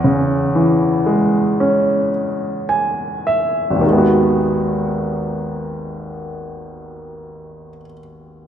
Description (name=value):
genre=pop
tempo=51-59 BPM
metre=4/4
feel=straight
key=G# minor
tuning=A4 = 439 Hz
part: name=clear baby grand piano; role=accompaniment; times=0.0-8.5 s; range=G#1 to G#5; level=-16 LUFS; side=equal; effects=none
room=wet lush hall reverb, RT60 3.0 s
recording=rough home demo mix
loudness=-15 LUFS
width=side -9 dB against mid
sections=0.0-3.8 A section; 3.8-8.5 B section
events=slowing down 0.0-3.8; grand piano fill 2.1-3.8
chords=0.0 C#m/E; 3.8 G#m7